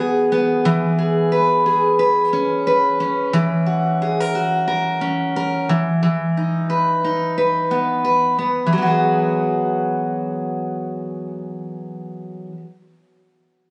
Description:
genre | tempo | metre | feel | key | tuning
pop | 89 BPM | 4/4 | swing 55% on 16ths | E major | A4 = 441 Hz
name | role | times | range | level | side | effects
picked steel-string acoustic guitar | accompaniment | 0.0-12.7 s | E3 to B4 | -19 LUFS | equal | none
room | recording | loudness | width
light reverb | recorded on a phone in the room, club reverb, nothing above 10.6 kHz | -19 LUFS | mono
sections
0.0-8.7 A section; 8.7-11.4 B section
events
none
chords
0.0 Eadd9; 0.6 C#m7/E; 3.3 F#7/E; 5.7 B/E; 8.7 Eadd9

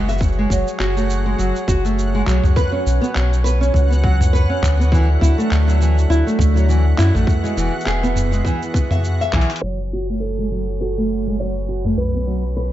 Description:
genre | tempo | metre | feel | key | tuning
folktronica | 102 BPM | 4/4 | swing 56% on 16ths | F# minor | A4 = 441 Hz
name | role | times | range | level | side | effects
pedal harmonium | sustained chords | 0.0-12.7 s | E3 to G#5 | -29 LUFS | right 2 dB | none
nylon-string guitar | arpeggios | 0.0-12.7 s | E3 to E5 | -22 LUFS | right 1 dB | low-pass filter, digital delay
round analog bass | bass | 0.0-12.7 s | E1 to F#2 | -17 LUFS | equal | none
backwards swelling texture | texture | 0.0-12.7 s | F#4 to B5 | -32 LUFS | left 1 dB | built-in reverb
lo-fi sampler-style drum kit | drums | 0.1-12.7 s | handclaps, hi-hat, shaker, toms | -24 LUFS | equal | small room ambience
electronic kick drum | drums | 0.2-9.5 s | none | -19 LUFS | equal | small room ambience
felt-muted upright piano | melody | 9.6-12.7 s | A4 to C#5 | -28 LUFS | right 4 dB | digital delay
room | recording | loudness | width
little or no reverb | dark, warm production, low-pass filter, nothing above 7.8 kHz | -15 LUFS | side -13 dB against mid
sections
0.0-9.6 A section; 9.6-12.7 B section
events
drum fill 9.3; band accent 9.3; filter sweep on nylon-string guitar 9.6-12.7; filter sweep 9.6-12.7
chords
0.2 F#madd9; 2.6 Bsus2; 4.9 Dadd9; 7.3 E; 9.6 F#madd9; 12.0 Bsus2

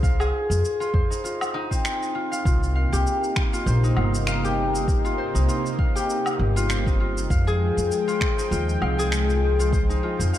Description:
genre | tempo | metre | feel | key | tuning
organic downtempo | 99 BPM | 4/4 | swing 56% on 16ths | F minor | A4 = 443 Hz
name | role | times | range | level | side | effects
concert harp | arpeggios | 0.0-10.4 s | C4 to F5 | -26 LUFS | left 2 dB | tape echo, shimmer reverb
upright bass | bass | 0.0-10.3 s | G1 to F2 | -23 LUFS | equal | none
electronic cabasa, woodblock and finger snaps | drums | 0.0-10.4 s | none | -32 LUFS | equal | none
electronic kick drum | drums | 0.0-9.9 s | none | -23 LUFS | equal | none
udu | percussion | 0.9-1.1 s | none | -27 LUFS | left 1 dB | none
warm analog pad | sustained chords | 2.5-10.4 s | C3 to G5 | -29 LUFS | right 1 dB | chorus, sidechain pumping, shimmer reverb
room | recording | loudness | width
light reverb, small room ambience | dark, warm production, lossy compression artefacts | -20 LUFS | side -12 dB against mid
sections
0.0-10.4 A section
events
none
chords
0.0 Fm; 2.5 Cm7; 7.3 Fmadd9

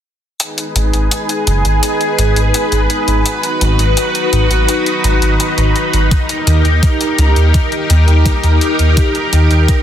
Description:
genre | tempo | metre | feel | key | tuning
synthwave | 84 BPM | 4/4 | straight | G# minor | A4 = 442 Hz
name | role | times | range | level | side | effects
string machine, full ensemble | sustained chords | 0.4-9.8 s | D#4 to B4 | -15 LUFS | equal | phaser, ensemble chorus, sidechain pumping
electronic hi-hat | drums | 0.4-9.8 s | none | -20 LUFS | left 2 dB | overdrive
dark detuned saw bass | bass | 0.8-9.7 s | F#1 to D#2 | -12 LUFS | equal | none
electronic kick drum | drums | 6.1-9.8 s | none | -14 LUFS | equal | overdrive
room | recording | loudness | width
light reverb | dense, heavily limited modern master | -11 LUFS | side -10 dB against mid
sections
0.4-9.8 A section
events
filter sweep on detuned saw bass 0.4-9.8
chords
0.4 G#m; 6.1 D#

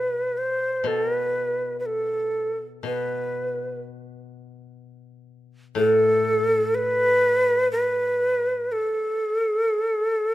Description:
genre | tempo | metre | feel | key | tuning
japanese traditional, Japanese chamber music | 61 BPM | 4/4 | rubato | unclear | A4 = 440 Hz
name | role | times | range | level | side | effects
breathy shakuhachi | melody | 0.0-10.3 s | A4 to C5 | -21 LUFS | equal | none
koto | accompaniment | 0.0-8.7 s | A2 to B2 | -28 LUFS | left 2 dB | none
room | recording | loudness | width
light reverb | close, detailed microphones | -21 LUFS | side -15 dB against mid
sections
0.0-10.3 A section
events
none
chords
none

